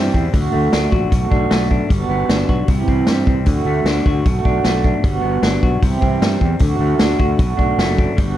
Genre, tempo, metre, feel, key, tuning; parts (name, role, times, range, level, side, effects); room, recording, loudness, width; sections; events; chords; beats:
indie rock; 153 BPM; 4/4; straight; A4 = 440 Hz
electric guitar through a small old amp; riff; 0.0-8.4 s; B2 to F#4; -22 LUFS; left 6 dB
electric guitar through a small old amp; riff; 0.0-8.4 s; E3 to G4; -20 LUFS; right 6 dB; wide subtle chorus, analog delay
fuzz fingered electric bass; bass; 0.0-8.3 s; F#1 to G2; -20 LUFS; equal; overdrive
vintage drum kit; drums; 0.1-8.3 s; hi-hat, kick drum, snare drum; -18 LUFS; equal
moderate studio reverb, RT60 0.6 s; cassette tape; -14 LUFS; side -12 dB against mid
0.0-8.4 A section
0.3 D; 1.1 Bm7; 1.9 Gmaj7; 2.7 C; 3.5 D; 4.2 Bm7; 5.0 Gmaj7; 5.8 C; 6.6 D; 7.4 Bm7
| 0.33 0.72 1.11 1.51 | 1.90 2.29 2.68 3.07 | 3.47 3.86 4.25 4.64 | 5.04 5.43 5.82 6.22 | 6.61 7.00 7.40 7.79 | 8.19